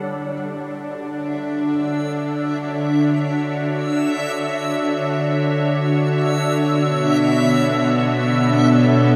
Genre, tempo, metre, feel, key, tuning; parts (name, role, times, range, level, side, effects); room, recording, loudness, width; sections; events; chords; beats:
ambient; free time; D major; A4 = 440 Hz
evolving wavetable pad; sustained chords; 0.0-9.2 s; B2 to F#5; -23 LUFS; equal; chorus, built-in reverb
felt-muted upright piano; arpeggios; 0.0-1.7 s; C#5; -38 LUFS; equal; delay
bowed-like drone; drone; 0.2-9.2 s; D3 to D4; -23 LUFS; equal; built-in reverb
backwards swelling texture; texture; 1.3-9.2 s; E5 to E6; -29 LUFS; equal; built-in reverb
wet huge ambient reverb, RT60 7.6 s; dark, warm production; -19 LUFS; mono
0.0-9.2 A section
fade-in on ambient pad 0.0-9.2; fade-in on synth texture 0.0-9.2
0.0 Dmaj7; 6.5 Bm11
free time